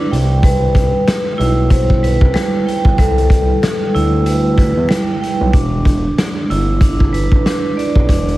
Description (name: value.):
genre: hip hop, boom-bap hip-hop.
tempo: 94 BPM.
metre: 4/4.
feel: swing 58% on 16ths.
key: E minor.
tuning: A4 = 440 Hz.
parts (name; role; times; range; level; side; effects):
vibraphone with medium hard mallets; accompaniment; 0.0-8.4 s; G3 to G5; -18 LUFS; right 3 dB; cassette tape, high-pass filter, low-pass filter.
smooth gliding synth bass; bass; 0.1-8.4 s; E1 to E2; -16 LUFS; equal; none.
raw garage drum kit; drums; 0.1-8.4 s; hi-hat, kick drum, rim click, snare drum; -15 LUFS; equal; none.
vibraphone with soft mallets; melody; 0.4-4.9 s; A4 to C5; -21 LUFS; left 3 dB; high-pass filter, low-pass filter, tape echo.
finger snap; percussion; 1.1-5.1 s; none; barely audible; none; none.
room: light reverb.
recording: heavily compressed radio sound, vinyl crackle.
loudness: -12 LUFS.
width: side -17 dB against mid.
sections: 0.0-5.5 A section; 5.5-8.4 B section.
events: none.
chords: 0.1 Cmaj7; 5.5 Em7.